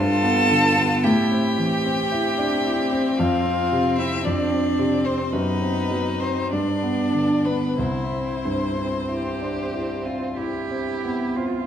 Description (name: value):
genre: classical, slow romantic movement for piano quartet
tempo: 45-56 BPM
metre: 3/4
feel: rubato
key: C major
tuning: A4 = 444 Hz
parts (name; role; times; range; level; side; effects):
- bright violin; melody; 0.0-10.4 s; B4 to A5; -26 LUFS; left 6 dB; none
- clear cello; second line; 0.0-11.7 s; B3 to A4; -27 LUFS; right 7 dB; none
- rich violin; second line; 0.0-11.7 s; C4 to G4; -28 LUFS; left 2 dB; none
- warm grand piano; accompaniment; 0.0-11.7 s; C2 to E4; -23 LUFS; equal; none
room: wet recital hall reverb, RT60 1.5 s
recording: dark, warm production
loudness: -20 LUFS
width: side -9 dB against mid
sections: 0.0-11.7 A section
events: none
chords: 0.0 G7; 1.0 Am7; 3.2 Cadd11/F; 5.3 B/F#; 6.5 G; 7.8 C